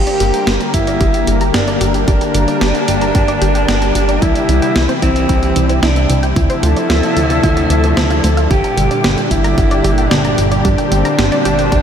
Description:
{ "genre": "synthwave", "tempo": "112 BPM", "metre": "4/4", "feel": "straight", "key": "G dorian", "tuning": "A4 = 440 Hz", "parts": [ { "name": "growling alto saxophone", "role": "melody", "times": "0.0-11.8 s", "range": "C4 to G4", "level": "-18 LUFS", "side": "equal", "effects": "tape echo" }, { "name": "analog string pad", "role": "sustained chords", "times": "0.0-11.8 s", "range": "Bb2 to Bb4", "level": "-18 LUFS", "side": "left 1 dB", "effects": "ensemble chorus, sidechain pumping" }, { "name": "chorused synth bass", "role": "bass", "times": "0.0-11.8 s", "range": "G1 to D2", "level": "-16 LUFS", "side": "equal", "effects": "sidechain pumping" }, { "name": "analog pluck", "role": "arpeggios", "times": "0.1-11.8 s", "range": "E4 to Bb5", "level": "-22 LUFS", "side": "right 2 dB", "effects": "chorus, cassette tape, tape echo" }, { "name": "gated 80s digital drum machine", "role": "drums", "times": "0.1-11.8 s", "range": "hi-hat, snare drum", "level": "-20 LUFS", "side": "equal", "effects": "gated reverb, gated reverb snare" }, { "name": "electronic kick drum", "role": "drums", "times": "0.7-11.8 s", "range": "none", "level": "-16 LUFS", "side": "equal", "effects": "none" } ], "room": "moderate huge ambient reverb, RT60 8.4 s", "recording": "dreamy mix soaked in reverb", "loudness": "-11 LUFS", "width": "side -8 dB against mid", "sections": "0.0-11.8 A section", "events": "filter sweep on synth arpeggio sound 0.0-11.8", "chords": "0.0 Gm; 4.2 C; 6.4 Dm7; 8.5 Gm", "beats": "0.47 1.01 1.54 | 2.08 2.61 3.15 3.69 | 4.22 4.76 5.29 5.83 | 6.36 6.90 7.44 7.97 | 8.51 9.04 9.58 10.11 | 10.65 11.19 11.72" }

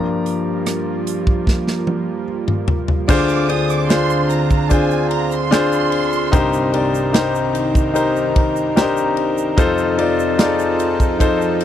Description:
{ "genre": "pop ballad", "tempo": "74 BPM", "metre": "4/4", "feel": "straight", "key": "unclear", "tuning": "A4 = 440 Hz", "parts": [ { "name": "clear concert grand piano", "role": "accompaniment", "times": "0.0-11.6 s", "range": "C2 to Bb5", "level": "-17 LUFS", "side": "left 3 dB", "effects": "none" }, { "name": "lush unison pad", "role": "sustained chords", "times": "0.0-11.6 s", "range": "D3 to Bb4", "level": "-24 LUFS", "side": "right 4 dB", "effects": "chorus" }, { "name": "modern studio drum kit", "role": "drums", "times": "0.3-11.6 s", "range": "crash cymbal, hi-hat, kick drum, ride cymbal, rim click, snare drum, toms", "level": "-18 LUFS", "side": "equal", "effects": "none" }, { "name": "warm studio violin section", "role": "second line", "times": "3.1-6.9 s", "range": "Ab5 to Eb6", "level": "-24 LUFS", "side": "right 7 dB", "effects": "none" }, { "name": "egg shaker", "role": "percussion", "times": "3.1-11.6 s", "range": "none", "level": "-37 LUFS", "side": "right 27 dB", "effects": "none" } ], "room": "light reverb", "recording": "dry, close 1970s-style studio recording", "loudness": "-15 LUFS", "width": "side -10 dB against mid", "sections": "0.0-3.1 A section; 3.1-11.6 B section", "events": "grand piano solo 0.0-3.1; drum fill 1.5-3.1", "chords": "0.0 Gm7; 3.1 Dm7b5; 6.3 Cm7; 9.6 F7", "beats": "0.66 1.47 2.28 | 3.09 3.90 4.71 5.52 | 6.33 7.14 7.95 8.77 | 9.58 10.39 11.20" }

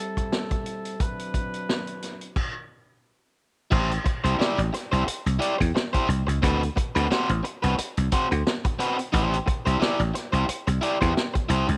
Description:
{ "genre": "funk", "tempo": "89 BPM", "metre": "4/4", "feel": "swing 56% on 16ths", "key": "A dorian", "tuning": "A4 = 440 Hz", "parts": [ { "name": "dark brass ensemble", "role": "sustained chords", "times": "0.0-2.3 s", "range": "F#3 to B4", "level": "-35 LUFS", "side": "equal", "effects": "none" }, { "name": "vintage drum kit", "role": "drums", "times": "0.2-11.8 s", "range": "crash cymbal, hi-hat, kick drum, snare drum", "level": "-30 LUFS", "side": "equal", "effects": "none" }, { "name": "crunchy overdriven guitar", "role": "accompaniment", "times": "3.7-11.7 s", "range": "C4 to D5", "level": "-28 LUFS", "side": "equal", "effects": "none" }, { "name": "dry thumbed slap bass", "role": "bass", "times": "3.7-11.8 s", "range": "A1 to E2", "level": "-26 LUFS", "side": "equal", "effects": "none" } ], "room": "light reverb, small room ambience", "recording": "none", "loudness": "-25 LUFS", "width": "mono", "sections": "0.0-3.7 A section; 3.7-11.8 B section", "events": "stop 2.4-3.7", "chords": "0.0 Am7; 1.0 D13; 3.7 Am7; 6.4 D6; 9.1 Am7", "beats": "0.32 | 1.00 1.68 2.36 3.04 | 3.72 4.40 5.07 5.75 | 6.43 7.11 7.78 8.46 | 9.13 9.81 10.49 11.17" }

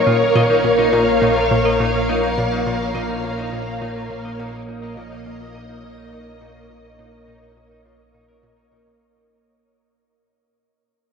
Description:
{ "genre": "ambient, sequencer-driven space music", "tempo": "104 BPM", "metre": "4/4", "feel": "straight", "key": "unclear", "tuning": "A4 = 440 Hz", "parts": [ { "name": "string machine, full ensemble", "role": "sustained chords", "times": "0.0-9.0 s", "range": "Bb3 to F5", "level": "-18 LUFS", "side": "equal", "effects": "ensemble chorus" }, { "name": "clean electric guitar", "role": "arpeggios", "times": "0.0-8.8 s", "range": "Eb4 to Eb5", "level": "-29 LUFS", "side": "equal", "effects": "auto-pan, ping-pong delay" }, { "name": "analog drone", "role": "bass", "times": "0.6-9.0 s", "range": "Bb1", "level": "-31 LUFS", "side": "equal", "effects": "chorus" }, { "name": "analog pluck", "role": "riff", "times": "0.1-8.8 s", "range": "Bb2", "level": "-24 LUFS", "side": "left 1 dB", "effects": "chorus, ping-pong delay" } ], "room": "wet huge ambient reverb, RT60 8.2 s", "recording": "worn, warbling old tape, cassette tape, warbly pitch drift", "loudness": "-16 LUFS", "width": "side -6 dB against mid", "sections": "0.0-9.0 A section", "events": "fade-out on synth arpeggio sound 0.0-9.0; fade-out on clean electric guitar 0.0-9.0; fade-out 0.0-9.0", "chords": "0.0 Bbm", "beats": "0.35 0.93 1.51 | 2.08 2.66 3.24 3.81 | 4.39 4.97 5.55 6.12 | 6.70 7.28 7.85 8.43" }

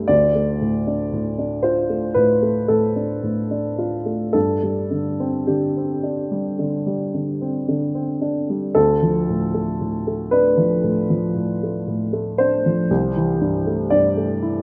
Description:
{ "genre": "neoclassical minimalist piano", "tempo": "53-60 BPM", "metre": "4/4", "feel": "rubato", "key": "D dorian", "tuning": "A4 = 439 Hz", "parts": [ { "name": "warm upright piano", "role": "solo", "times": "0.0-14.6 s", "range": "C2 to D5", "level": "-21 LUFS", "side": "equal", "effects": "none" } ], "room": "moderate lush hall reverb, RT60 3.0 s", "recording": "rough home demo mix", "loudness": "-21 LUFS", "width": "mono", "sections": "0.0-8.7 A section; 8.7-14.6 A section", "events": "none", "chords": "0.1 Dm; 4.3 Gsus4; 8.7 Dm; 12.9 C6", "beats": "| 0.11 1.14 2.17 3.24 | 4.35 5.47 6.58 7.66 | 8.75 9.80 10.84 11.87 | 12.90 13.91" }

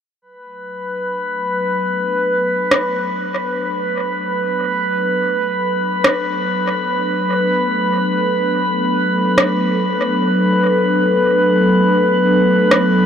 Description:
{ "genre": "ambient dub", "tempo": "free time", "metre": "none", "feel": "none", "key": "B minor", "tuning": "A4 = 440 Hz", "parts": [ { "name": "warbly tape-like pad", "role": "sustained chords", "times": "0.7-13.1 s", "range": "F#3 to A4", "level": "-19 LUFS", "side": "equal", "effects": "chorus, built-in reverb" }, { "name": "drifting glass-harmonics texture", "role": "texture", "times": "0.6-13.1 s", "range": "B4", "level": "-17 LUFS", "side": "equal", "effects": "chorus, built-in reverb" }, { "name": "electronic rim click", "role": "drums", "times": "2.7-12.9 s", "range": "none", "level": "-20 LUFS", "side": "equal", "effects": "overdrive, dub echo" } ], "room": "light reverb", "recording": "none", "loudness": "-14 LUFS", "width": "side -8 dB against mid", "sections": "0.2-13.1 A section", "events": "fade-in on ambient pad 0.2-13.1", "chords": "0.2 Bm7", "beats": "free time" }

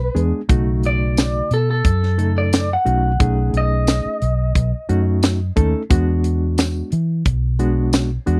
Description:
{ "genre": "straight-eighth soul blues", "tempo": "89 BPM", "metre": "4/4", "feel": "straight", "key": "B mixolydian", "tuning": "A4 = 440 Hz", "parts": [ { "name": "electric guitar through a small old amp", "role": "melody", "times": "0.0-5.5 s", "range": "A4 to F#5", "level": "-25 LUFS", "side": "equal", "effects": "none" }, { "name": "vintage muted fingered electric bass", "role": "bass", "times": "0.0-8.4 s", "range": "B1 to E3", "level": "-21 LUFS", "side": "equal", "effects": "none" }, { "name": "bright reed electric piano", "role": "accompaniment", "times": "0.1-8.4 s", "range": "C#3 to A4", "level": "-25 LUFS", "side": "equal", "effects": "fast tremolo" }, { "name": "tight funk drum kit", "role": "drums", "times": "0.2-8.4 s", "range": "hi-hat, kick drum, snare drum, tambourine", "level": "-20 LUFS", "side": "equal", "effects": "none" } ], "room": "little or no reverb", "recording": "dry, close 1970s-style studio recording", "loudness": "-18 LUFS", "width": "mono", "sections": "0.0-8.4 A section", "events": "clean electric guitar solo 0.0-8.4", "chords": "0.5 B7; 5.9 E7", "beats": "| 0.49 1.17 1.85 2.52 | 3.20 3.88 4.55 5.23 | 5.91 6.58 7.26 7.93" }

